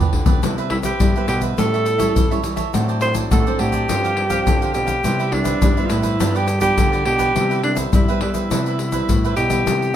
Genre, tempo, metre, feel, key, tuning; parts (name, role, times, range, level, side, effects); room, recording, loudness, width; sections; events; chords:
samba and choro; 104 BPM; 4/4; straight; C major; A4 = 440 Hz
breathy alto saxophone; melody; 0.0-10.0 s; D4 to C5; -21 LUFS; right 1 dB
cavaquinho; accompaniment; 0.0-9.7 s; D4 to F5; -27 LUFS; right 8 dB
nylon-string guitar; accompaniment; 0.0-10.0 s; G2 to E4; -25 LUFS; left 1 dB
nylon-string guitar; bass; 0.0-10.0 s; G2 to G3; -23 LUFS; equal
surdo, egg shaker and pandeiro; percussion; 0.0-10.0 s; -20 LUFS; left 1 dB
light reverb; -16 LUFS; side -10 dB against mid
0.0-9.7 A section
drum fill 0.0-0.4
0.4 Cmaj7; 1.6 A7; 2.7 D7/A; 3.9 G7sus4; 5.0 Cmaj7; 6.2 G7; 7.4 Cmaj7